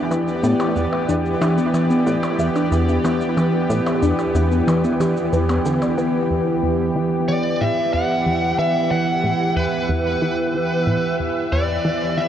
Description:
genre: ambient, sequencer-driven space music.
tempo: 92 BPM.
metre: 4/4.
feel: straight.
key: E minor from 6.3 s.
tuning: A4 = 445 Hz.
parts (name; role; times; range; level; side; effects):
lush unison pad; sustained chords; 0.0-12.3 s; E3 to E5; -20 LUFS; right 1 dB; chorus.
soft round pluck; arpeggios; 0.0-6.1 s; B3 to E5; -25 LUFS; left 2 dB; chorus, auto-pan, tape echo.
plucky analog bass; riff; 0.1-12.3 s; E2 to B3; -23 LUFS; equal; tape echo.
shaker and percussion blips; percussion; 0.1-6.1 s; none; -33 LUFS; equal; tape echo.
biting lead guitar; melody; 7.3-12.3 s; B4 to F#5; -21 LUFS; equal; overdrive, tape echo.
room: wet huge ambient reverb, RT60 8.0 s.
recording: worn, warbling old tape, cassette tape, warbly pitch drift.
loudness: -17 LUFS.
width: side -10 dB against mid.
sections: 0.0-6.3 A section; 6.3-12.3 B section.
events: filter sweep on analog synth bass 6.3-12.3.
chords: 0.0 Em7.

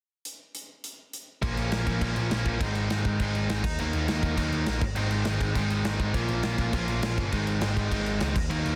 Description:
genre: punk rock.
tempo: 204 BPM.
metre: 4/4.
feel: straight.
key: unclear.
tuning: A4 = 438 Hz.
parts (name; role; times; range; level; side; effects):
big rock drum kit; drums; 0.3-8.7 s; crash cymbal, hi-hat, kick drum, snare drum; -34 LUFS; equal; none.
biting overdriven guitar; riff; 1.4-8.8 s; Ab2 to Eb4; -33 LUFS; equal; none.
tight distorted guitar; riff; 1.4-8.8 s; Ab2 to F4; -35 LUFS; equal; distortion.
overdriven picked electric bass; bass; 1.4-8.8 s; G1 to Eb2; -32 LUFS; equal; none.
room: little or no reverb.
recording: dense, heavily limited modern master.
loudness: -27 LUFS.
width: mono.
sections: 0.3-1.4 A section; 1.4-8.8 B section.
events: none.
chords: 0.3 N.C.; 1.4 Bbm; 2.6 Ab; 3.6 Ebm; 4.8 Ab; 6.1 Bbm; 7.3 Ab.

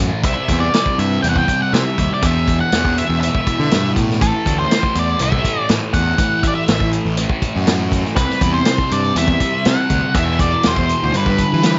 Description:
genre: psychedelic rock.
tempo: 121 BPM.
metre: 4/4.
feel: straight.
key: A dorian.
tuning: A4 = 440 Hz.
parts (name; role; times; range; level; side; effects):
fuzz guitar; riff; 0.0-11.8 s; E2 to C4; -23 LUFS; equal; distortion, phaser.
fuzz picked electric bass; bass; 0.0-11.8 s; A1 to E3; -22 LUFS; equal; overdrive.
octave-fuzz lead guitar; melody; 0.2-11.8 s; A4 to G5; -22 LUFS; equal; distortion, slapback echo.
vintage drum kit; drums; 0.2-11.8 s; hi-hat, kick drum, snare drum; -22 LUFS; equal; none.
room: studio reverb.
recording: nothing above 7.6 kHz.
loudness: -17 LUFS.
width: mono.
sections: 0.0-11.8 A section.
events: none.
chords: 0.2 C; 2.2 E5; 4.2 A5; 8.2 C; 10.2 E5; 11.1 G.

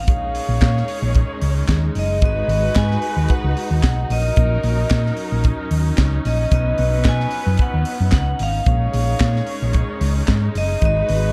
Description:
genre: disco.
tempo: 112 BPM.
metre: 4/4.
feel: straight.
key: unclear.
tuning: A4 = 440 Hz.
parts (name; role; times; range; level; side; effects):
vibraphone with medium hard mallets; melody; 0.0-11.3 s; D#5 to G#5; -27 LUFS; equal; none.
rich studio string section; sustained chords; 0.0-11.3 s; F#3 to B4; -31 LUFS; equal; none.
hollow-body short-scale fingered electric bass; bass; 0.0-11.3 s; F#1 to B2; -21 LUFS; equal; none.
warm horn section; stabs; 0.1-11.3 s; E#3 to C#5; -32 LUFS; equal; none.
tight funk drum kit; drums; 0.1-11.2 s; handclaps, hi-hat, kick drum, snare drum; -23 LUFS; equal; none.
room: small room reverb.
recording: dark, warm production.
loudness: -19 LUFS.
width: mono.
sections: 0.0-11.3 A section.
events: none.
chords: 0.1 D#9sus4/A#; 2.2 G#m7; 4.1 F#6/A#; 6.5 Badd9; 8.7 D#9sus4/A#; 10.8 G#m7.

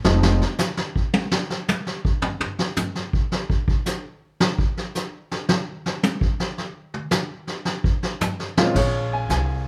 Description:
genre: jazz piano trio.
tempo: 110 BPM.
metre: 4/4.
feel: swing 69% on 8ths.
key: unclear.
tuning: A4 = 440 Hz.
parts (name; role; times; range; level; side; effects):
upright bass; bass; 0.0-0.4, 8.6-9.7 s; F1 to C2; -24 LUFS; equal; none.
vintage brush drum kit; drums; 0.0-9.7 s; brushed snare drum, crash cymbal, hi-hat, kick drum, snare drum, toms; -24 LUFS; equal; none.
warm grand piano; melody; 0.1-0.4, 8.6-9.7 s; Bb2 to Ab5; -25 LUFS; equal; none.
room: light reverb.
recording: band playing live in one room.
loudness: -24 LUFS.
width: mono.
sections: 0.0-8.7 A section.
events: grand piano solo 0.0-8.7; drum solo 0.1-8.7.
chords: 0.1 N.C.; 8.7 Bbm9.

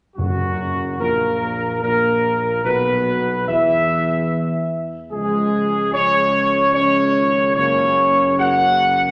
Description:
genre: classical.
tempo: 73 BPM.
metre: 3/4.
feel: straight.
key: F# major.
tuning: A4 = 439 Hz.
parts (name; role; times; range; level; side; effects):
mellow trumpet section; melody; 0.2-9.1 s; F#4 to F#5; -19 LUFS; equal; none.
clear trombone section; sustained chords; 0.2-9.1 s; F#2 to A#3; -30 LUFS; equal; none.
warm French horn section; sustained chords; 0.2-9.1 s; F#3 to F#4; -28 LUFS; equal; none.
mellow tuba; bass; 0.2-9.1 s; F#1 to E2; -28 LUFS; equal; none.
timpani; percussion; 0.2-1.4 s; F#2; -29 LUFS; equal; none.
room: wet concert hall reverb, RT60 2.1 s.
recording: nothing above 10.4 kHz.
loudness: -18 LUFS.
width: mono.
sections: 0.2-9.1 A section.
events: none.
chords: 0.2 F#; 2.6 E5/B; 5.1 C#; 7.6 F#.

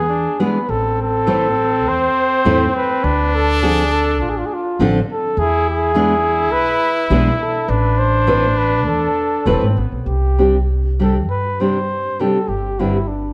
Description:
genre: mexican folk, mariachi.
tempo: 102 BPM.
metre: 4/4.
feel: straight.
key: A harmonic minor, C major from 10.1 s.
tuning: A4 = 440 Hz.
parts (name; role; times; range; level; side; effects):
dark trumpet; melody; 0.0-13.3 s; D4 to C5; -21 LUFS; equal; none.
mellow trumpet; second line; 0.0-10.1 s; B3 to E4; -23 LUFS; equal; none.
upright bass; bass; 0.0-13.3 s; E1 to G2; -23 LUFS; equal; none.
nylon-string guitar; accompaniment; 0.4-13.0 s; G2 to B4; -22 LUFS; equal; none.
room: moderate recital hall reverb, RT60 1.7 s.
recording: dark, warm production.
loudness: -17 LUFS.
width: mono.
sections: 0.7-10.1 A section; 10.1-13.3 B section.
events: none.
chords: 0.0 E7; 0.7 Am; 3.0 Dm7; 5.4 E7; 7.7 Amadd9; 10.1 Csus2; 12.5 Gsus4.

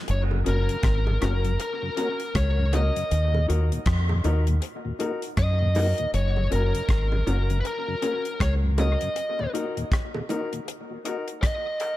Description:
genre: dub reggae.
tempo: 79 BPM.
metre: 4/4.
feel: swing 60% on 16ths.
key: F# major.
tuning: A4 = 437 Hz.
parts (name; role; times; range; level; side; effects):
biting lead guitar; melody; 0.1-12.0 s; A#4 to D#5; -30 LUFS; equal; overdrive, dub echo.
deep dub fingered electric bass; bass; 0.1-9.0 s; F#1 to F#2; -22 LUFS; equal; none.
damped 70s drum kit; drums; 0.1-12.0 s; hi-hat, kick drum, rim click; -28 LUFS; equal; none.
mellow tonewheel organ; accompaniment; 0.3-11.9 s; D#2 to F#4; -34 LUFS; left 2 dB; chorus vibrato, slow rotary speaker, high-pass filter, dub echo.
bongos; percussion; 0.3-12.0 s; none; -37 LUFS; right 4 dB; high-pass filter on perc, dub echo.
dark upright piano; stabs; 0.4-12.0 s; C#4 to A#4; -32 LUFS; left 3 dB; high-pass filter, dub echo.
room: light reverb, studio reverb.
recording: dark, warm production.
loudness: -22 LUFS.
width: side -15 dB against mid.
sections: 0.1-12.0 A section.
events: break 9.2-12.0; filter sweep 9.2-12.0.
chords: 0.1 F#; 3.1 D#m; 6.1 F#; 9.2 D#m.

